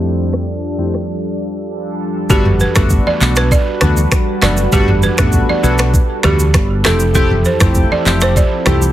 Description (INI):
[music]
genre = afrobeats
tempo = 99 BPM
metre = 4/4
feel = straight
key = G major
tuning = A4 = 440 Hz
[part]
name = warm analog keys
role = accompaniment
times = 0.0-8.8 s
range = F2 to G4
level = -19 LUFS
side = left 3 dB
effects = chorus, plate reverb
[part]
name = warm analog pad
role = sustained chords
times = 0.0-8.9 s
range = F2 to B4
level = -21 LUFS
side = right 1 dB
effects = lush chorus
[part]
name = afro-pop drum kit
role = drums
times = 0.0-8.9 s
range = finger snaps, handclaps, kick drum, rim click, shaker, toms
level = -15 LUFS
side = equal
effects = none
[part]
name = balafon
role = riff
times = 2.3-8.5 s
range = G4 to D5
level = -19 LUFS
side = right 4 dB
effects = tape echo
[part]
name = fingered electric bass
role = bass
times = 2.3-8.9 s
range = F1 to D2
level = -15 LUFS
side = equal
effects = none
[part]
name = congas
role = percussion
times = 2.3-8.9 s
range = none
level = -24 LUFS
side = left 2 dB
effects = none
[sound]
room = light reverb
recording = heavily compressed radio sound, low-pass filter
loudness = -11 LUFS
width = side -13 dB against mid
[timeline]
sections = 0.0-2.3 A section; 2.3-8.9 B section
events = filter sweep 0.0-2.3; break 1.1-2.3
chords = 0.0 Fmaj7; 2.3 Gmaj7; 6.8 Fmaj7